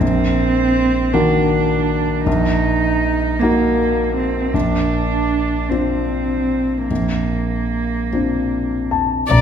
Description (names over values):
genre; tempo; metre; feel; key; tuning
neoclassical piano and strings; 49-54 BPM (dotted quarters); 6/8; rubato; Bb major; A4 = 440 Hz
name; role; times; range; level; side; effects
warm cello; second line; 0.0-9.4 s; G3 to Eb4; -20 LUFS; right 4 dB; none
warm grand piano; accompaniment; 0.0-9.4 s; Bb1 to Bb5; -18 LUFS; left 1 dB; none
rich violin; melody; 9.3-9.4 s; D5; -17 LUFS; left 10 dB; none
dark viola; accompaniment; 9.3-9.4 s; D5; -21 LUFS; right 2 dB; none
rich double bass; bass; 9.3-9.4 s; Bb1; -12 LUFS; left 1 dB; none
room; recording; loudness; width
wet recital hall reverb, RT60 1.4 s; heard from further back in the room; -16 LUFS; side -8 dB against mid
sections
0.0-9.3 A section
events
none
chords
0.0 Ebm/Bb; 4.5 Bbadd9